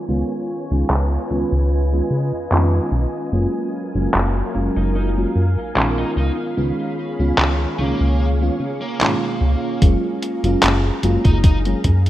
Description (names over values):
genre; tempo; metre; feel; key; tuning
vaporwave; 74 BPM; 4/4; swing 53% on 16ths; F# major; A4 = 440 Hz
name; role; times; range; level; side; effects
FM electric piano with soft pad layer; accompaniment; 0.0-11.8 s; B2 to E#4; -22 LUFS; equal; lush chorus, tape echo
soft string machine; sustained chords; 0.0-12.1 s; F#3 to C#6; -29 LUFS; equal; ensemble chorus
chorused synth bass; bass; 0.1-12.1 s; F#1 to C#3; -19 LUFS; equal; none
detuned 8-bit digital drum machine; drums; 0.9-12.1 s; handclaps, hi-hat; -21 LUFS; equal; none
bluesy overdriven lead guitar; melody; 4.8-11.6 s; A#3 to D#4; -28 LUFS; right 2 dB; distortion, vintage 12-bit sampler grit, tape echo
electronic kick drum; drums; 9.8-12.0 s; none; -14 LUFS; equal; none
room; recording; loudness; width
moderate lush hall reverb, RT60 2.1 s; rough home demo mix, cassette tape, low-pass filter; -16 LUFS; side -14 dB against mid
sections
0.0-9.8 A section; 9.8-12.1 B section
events
filter sweep 0.0-9.8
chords
0.0 C#7; 3.3 F#maj9; 6.2 C#7; 9.8 F#maj9